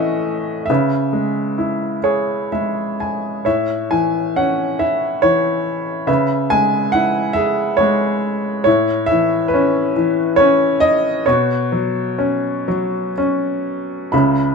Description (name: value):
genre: classical, lyrical solo piano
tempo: 58-72 BPM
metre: 3/4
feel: rubato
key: C# minor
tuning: A4 = 440 Hz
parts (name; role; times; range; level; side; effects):
- clear upright piano; solo; 0.0-14.5 s; C#2 to B5; -15 LUFS; equal; none
room: moderate studio reverb, RT60 0.6 s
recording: none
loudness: -15 LUFS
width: side -5 dB against mid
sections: 0.0-14.1 A section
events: upright piano fill 1.6-3.5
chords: 0.0 A; 0.7 C#m7; 3.5 A; 6.1 C#m7; 8.7 Aadd9; 11.3 Bsus2